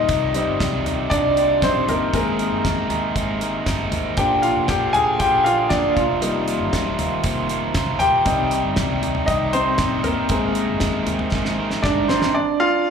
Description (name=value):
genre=piano-driven pop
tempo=118 BPM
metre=4/4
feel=straight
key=Bb mixolydian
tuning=A4 = 440 Hz
part: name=warm grand piano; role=accompaniment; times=0.0-12.9 s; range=F3 to Ab5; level=-20 LUFS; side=left 1 dB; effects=slapback echo
part: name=pedal harmonium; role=sustained chords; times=0.0-12.3 s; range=C3 to F4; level=-28 LUFS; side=equal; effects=none
part: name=crunchy overdriven guitar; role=riff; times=0.0-12.4 s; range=F2 to Bb4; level=-26 LUFS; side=right 5 dB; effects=slapback echo
part: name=vintage muted fingered electric bass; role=bass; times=0.0-12.3 s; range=F1 to C2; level=-29 LUFS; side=equal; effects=none
part: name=damped 70s drum kit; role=drums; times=0.1-12.3 s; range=hi-hat, kick drum, snare drum, toms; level=-26 LUFS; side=equal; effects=none
room=moderate plate reverb, RT60 2.2 s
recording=live gig heard through the venue's PA, club reverb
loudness=-18 LUFS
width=side -6 dB against mid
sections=0.0-12.3 A section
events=grand piano solo 0.0-12.3; drum fill 11.3-12.3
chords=0.1 Cm; 2.1 Abadd9; 4.2 Bb; 6.0 F7sus4; 8.3 Cm; 10.3 Abadd9; 12.3 Bb (rootless)